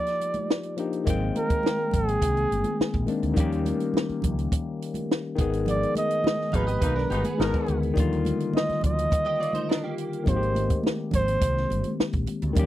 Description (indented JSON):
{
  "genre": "lush 1970s-style soul",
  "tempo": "104 BPM",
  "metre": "4/4",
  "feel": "straight",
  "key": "unclear",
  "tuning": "A4 = 440 Hz",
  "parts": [
    { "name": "breathy flugelhorn", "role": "melody", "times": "0.0-12.0 s", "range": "Ab4 to Eb5", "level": "-27 LUFS", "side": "right 2 dB", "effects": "none" },
    { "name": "overdriven tine electric piano", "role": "accompaniment", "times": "0.0-12.7 s", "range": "D3 to G5", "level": "-28 LUFS", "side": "left 4 dB", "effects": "phaser" },
    { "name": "compact cocktail drum kit", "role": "drums", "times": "0.1-12.7 s", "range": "hi-hat, kick drum, snare drum", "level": "-26 LUFS", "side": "equal", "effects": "none" },
    { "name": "congas", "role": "percussion", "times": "0.2-12.7 s", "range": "none", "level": "-35 LUFS", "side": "right 4 dB", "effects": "none" },
    { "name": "woody fretless electric bass", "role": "bass", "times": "1.1-12.7 s", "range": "G1 to Eb2", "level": "-28 LUFS", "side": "equal", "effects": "ensemble chorus" },
    { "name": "direct-recorded clean electric guitar", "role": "riff", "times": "6.5-10.2 s", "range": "Bb3 to F5", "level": "-33 LUFS", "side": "right 6 dB", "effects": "ensemble chorus" },
    { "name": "warm horn section", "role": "stabs", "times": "6.5-7.8 s", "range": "Cb3 to Bb4", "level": "-33 LUFS", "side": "left 2 dB", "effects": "none" }
  ],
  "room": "little or no reverb",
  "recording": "dry, close 1970s-style studio recording",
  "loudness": "-23 LUFS",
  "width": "side -13 dB against mid",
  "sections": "0.0-12.7 A section",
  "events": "band accent 5.7-8.0",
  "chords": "0.0 Ebmaj9; 1.1 Abmaj9; 3.4 Eb7; 5.4 Abmadd9; 8.0 Ebmaj9; 10.3 Abmaj9"
}